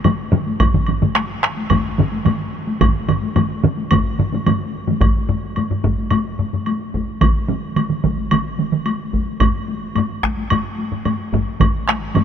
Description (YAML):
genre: japanese traditional, taiko drum ensemble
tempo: 109 BPM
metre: 4/4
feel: straight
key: none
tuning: none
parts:
  - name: solo taiko drums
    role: percussion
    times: 0.0-12.2 s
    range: none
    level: -24 LUFS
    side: left 4 dB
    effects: none
  - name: taiko ensemble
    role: percussion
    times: 0.0-12.2 s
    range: none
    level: -21 LUFS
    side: left 3 dB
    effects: none
  - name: woodblock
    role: percussion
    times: 0.0-12.2 s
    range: none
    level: -27 LUFS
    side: right 2 dB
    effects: none
  - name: taiko ensemble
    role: percussion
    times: 0.1-12.2 s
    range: none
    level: -21 LUFS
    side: right 5 dB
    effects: none
  - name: taiko ensemble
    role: percussion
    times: 0.6-11.7 s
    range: none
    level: -22 LUFS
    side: equal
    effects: none
room: moderate huge ambient reverb, RT60 7.4 s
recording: none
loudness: -16 LUFS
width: side -8 dB against mid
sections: 0.0-5.0 A section; 5.0-12.2 B section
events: none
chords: none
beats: 0.05 | 0.60 1.15 1.71 2.26 | 2.81 3.36 3.91 4.46 | 5.01 5.56 6.12 6.67 | 7.21 7.76 8.31 8.86 | 9.41 9.96 10.51 11.06 | 11.61 12.15